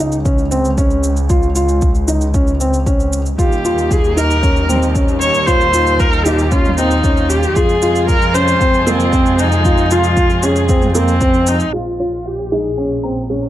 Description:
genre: piano and strings electronica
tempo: 115 BPM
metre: 4/4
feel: straight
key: Bb dorian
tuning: A4 = 440 Hz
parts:
  - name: felt-muted upright piano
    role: riff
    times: 0.0-13.5 s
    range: Bb3 to F4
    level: -18 LUFS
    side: equal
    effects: tape echo
  - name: muted symphonic double bass section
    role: bass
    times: 0.0-13.5 s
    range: Bb1 to F2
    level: -18 LUFS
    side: equal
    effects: sidechain pumping
  - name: electronic shaker and toms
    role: drums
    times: 0.1-11.7 s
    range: none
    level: -26 LUFS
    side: right 2 dB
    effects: none
  - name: electronic kick drum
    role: drums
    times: 0.3-11.3 s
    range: none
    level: -16 LUFS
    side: equal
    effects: none
  - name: rich viola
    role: melody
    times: 3.4-13.0 s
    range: C4 to Db5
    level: -16 LUFS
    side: equal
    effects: none
  - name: dark string quartet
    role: sustained chords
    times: 3.4-13.5 s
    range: Bb2 to Ab4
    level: -24 LUFS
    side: equal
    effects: sidechain pumping
  - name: soft round pluck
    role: arpeggios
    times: 11.7-13.4 s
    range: Ab4 to Bb5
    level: -27 LUFS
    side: right 3 dB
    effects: chorus, cassette tape, sidechain pumping, tape echo
room: light reverb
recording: low-pass filter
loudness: -12 LUFS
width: side -13 dB against mid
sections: 0.0-11.7 A section; 11.7-13.5 B section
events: filter sweep on synth arpeggio sound 11.7-13.5; filter sweep 11.7-13.5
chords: 0.0 Db; 3.4 Eb; 7.6 Fm; 11.7 Bbm7

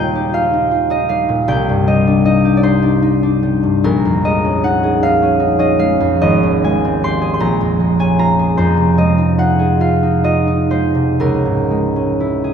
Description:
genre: classical, solo harp piece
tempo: 40-54 BPM (dotted quarters)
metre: 6/8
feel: rubato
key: unclear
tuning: A4 = 440 Hz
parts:
  - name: concert harp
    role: solo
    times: 0.0-12.5 s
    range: Ab1 to C6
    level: -12 LUFS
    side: equal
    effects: none
room: wet cathedral reverb, RT60 5.7 s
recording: none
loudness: -12 LUFS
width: side -7 dB against mid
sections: 0.0-12.5 A section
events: none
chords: 0.0 Ebadd9; 1.5 Cmadd9; 3.9 Bbm11; 6.2 Abmaj7; 7.4 Bbm7; 8.6 Fm7; 11.2 Dbm6

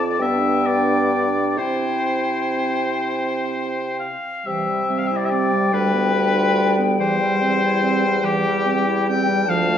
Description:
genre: classical, slow romantic movement for wind quintet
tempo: 40-50 BPM (dotted quarters)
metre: 6/8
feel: rubato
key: C major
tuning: A4 = 440 Hz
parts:
  - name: silver concert flute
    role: melody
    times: 0.0-9.8 s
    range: G5 to A5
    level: -24 LUFS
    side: left 4 dB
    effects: none
  - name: clear oboe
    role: second line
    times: 0.0-9.8 s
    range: G4 to G5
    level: -23 LUFS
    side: left 3 dB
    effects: none
  - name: clear clarinet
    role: accompaniment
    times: 0.0-9.8 s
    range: E3 to F4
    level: -27 LUFS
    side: right 6 dB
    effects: none
  - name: mellow French horn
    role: accompaniment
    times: 0.0-9.8 s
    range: F3 to C4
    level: -25 LUFS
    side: right 1 dB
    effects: none
  - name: mellow bassoon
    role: bass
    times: 0.0-9.8 s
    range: D2 to C3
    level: -24 LUFS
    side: right 1 dB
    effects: none
room: wet recital hall reverb, RT60 1.5 s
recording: none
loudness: -18 LUFS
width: side -9 dB against mid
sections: 0.0-4.5 A section; 4.5-9.8 B section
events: none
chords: 0.2 G; 1.6 C; 5.7 G7/D; 7.0 C/E

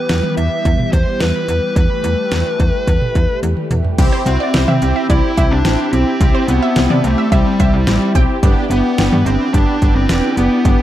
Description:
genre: synth-pop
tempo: 108 BPM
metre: 4/4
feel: straight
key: unclear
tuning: A4 = 440 Hz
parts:
  - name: smooth overdriven lead guitar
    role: melody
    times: 0.0-10.8 s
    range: G3 to E5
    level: -18 LUFS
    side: equal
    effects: none
  - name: phased analog pad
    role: sustained chords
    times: 0.0-10.8 s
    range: E3 to A5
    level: -24 LUFS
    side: equal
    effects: phaser, chorus
  - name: slap-like FM bass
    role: bass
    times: 0.1-10.8 s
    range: E1 to C3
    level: -17 LUFS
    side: equal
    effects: none
  - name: pop drum kit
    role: drums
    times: 0.1-10.8 s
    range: crash cymbal, hi-hat, kick drum, snare drum, toms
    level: -16 LUFS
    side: equal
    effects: none
  - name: analog synth brass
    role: accompaniment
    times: 4.0-10.8 s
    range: B3 to G4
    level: -20 LUFS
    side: equal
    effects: chorus
  - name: wide unison pluck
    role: second line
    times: 4.1-8.2 s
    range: C5 to G5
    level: -23 LUFS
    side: right 4 dB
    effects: analog delay
room: light reverb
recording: dark, warm production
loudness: -12 LUFS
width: side -13 dB against mid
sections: 0.0-4.0 A section; 4.0-10.8 B section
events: drum fill 3.4-4.0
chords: 0.0 Em; 4.0 C; 8.4 G6

